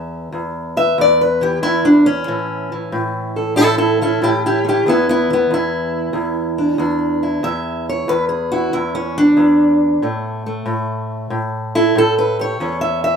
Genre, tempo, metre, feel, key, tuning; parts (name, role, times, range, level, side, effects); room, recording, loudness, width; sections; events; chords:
acoustic country blues, solo or duo; 93 BPM; 4/4; swing 67% on 8ths; A4 = 441 Hz
fingerpicked steel-string acoustic guitar; solo; 0.0-13.2 s; E2 to E5; -15 LUFS; equal
moderate studio reverb, RT60 0.6 s; minimal, uncompressed stereo recording; -14 LUFS; side -6 dB against mid
0.0-13.2 A section
steel-string acoustic guitar solo 0.0-13.2
0.0 E5; 2.3 A; 4.9 E5; 10.0 A